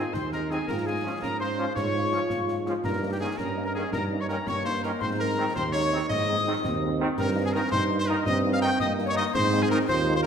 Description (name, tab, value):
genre	military-style march for wind band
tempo	111 BPM (dotted quarters)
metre	6/8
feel	straight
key	Ab major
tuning	A4 = 440 Hz
part	clear cornet	melody	0.0-10.3 s	G4 to G5	-32 LUFS	equal	none
part	bright piccolo	second line	0.0-10.3 s	G5 to G6	-33 LUFS	left 5 dB	none
part	clear woodwind section	second line	0.0-10.3 s	G4 to G5	-33 LUFS	left 2 dB	none
part	mellow euphonium	second line	0.0-10.3 s	Bb3 to F4	-31 LUFS	right 2 dB	none
part	warm French horn section	accompaniment	0.0-10.1 s	Ab3 to F4	-36 LUFS	left 4 dB	none
part	clear trombone section	sustained chords	0.0-9.8 s	Eb3 to Eb4	-35 LUFS	right 1 dB	none
part	mellow tuba	bass	0.0-10.3 s	Eb2 to Ab2	-29 LUFS	right 2 dB	none
part	concert snare drum, concert bass drum and clash cymbals	drums	0.1-10.1 s	none	-37 LUFS	left 2 dB	none
room	wet scoring stage reverb, RT60 1.5 s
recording	none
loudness	-24 LUFS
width	side -7 dB against mid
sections	0.0-10.3 A section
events	none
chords	0.0 Ab; 0.7 Db/Ab; 2.8 Eb7/G; 5.0 Ab; 7.2 Eb/G; 9.3 Ab